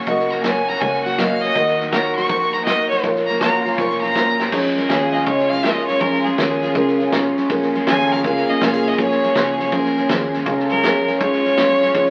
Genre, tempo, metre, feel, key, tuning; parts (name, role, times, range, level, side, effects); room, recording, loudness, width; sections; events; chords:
honky-tonk and classic country; 162 BPM; 4/4; swing 65% on 8ths; A4 = 440 Hz
dark upright piano; accompaniment; 0.0-12.1 s; Db4 to C6; -23 LUFS; equal
picked steel-string acoustic guitar; accompaniment; 0.0-12.1 s; F2 to Ab4; -27 LUFS; equal
clear studio string section; sustained chords; 0.0-12.1 s; Db3 to Ab4; -30 LUFS; equal
pedal steel guitar; sustained chords; 0.0-12.1 s; F4 to Bb4; -31 LUFS; equal
vintage drum kit; drums; 0.0-12.1 s; crash cymbal, hi-hat, kick drum, snare drum; -26 LUFS; equal
clear fiddle; second line; 0.1-12.1 s; Ab4 to Db6; -23 LUFS; equal
vintage muted fingered electric bass; bass; 0.1-12.1 s; F1 to Ab2; -36 LUFS; equal
wet studio reverb, RT60 0.6 s; very old 78 rpm record, vinyl crackle; -18 LUFS; mono
0.0-4.5 A section; 4.5-12.1 B section
fiddle solo 0.0-4.5, 4.5-12.1; drum fill 4.3; upright piano fill 6.8-7.5
0.0 Gb; 1.6 Ebm; 3.0 Bbm; 4.5 Db; 7.5 Bbm7; 10.5 Db